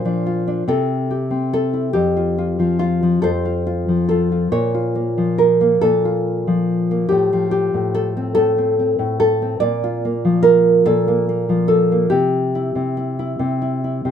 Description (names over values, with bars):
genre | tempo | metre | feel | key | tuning
folk, solo fingerstyle acoustic guitar | 47 BPM (dotted quarters) | 6/8 | rubato | unclear | A4 = 440 Hz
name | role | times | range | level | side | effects
nylon-string guitar | solo | 0.0-14.1 s | F2 to D5 | -16 LUFS | equal | none
room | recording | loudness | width
moderate studio reverb, RT60 0.6 s | minimal, uncompressed stereo recording | -16 LUFS | side -8 dB against mid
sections
0.0-4.5 A section; 4.5-14.1 B section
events
none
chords
0.0 Bbadd9; 0.7 C; 1.9 N.C.; 4.5 Bbm; 7.1 F/A; 9.6 Bb; 12.1 C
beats
0.68 | 1.93 3.22 | 4.52 5.83 | 7.11 8.37 | 9.62 10.86 | 12.12 13.39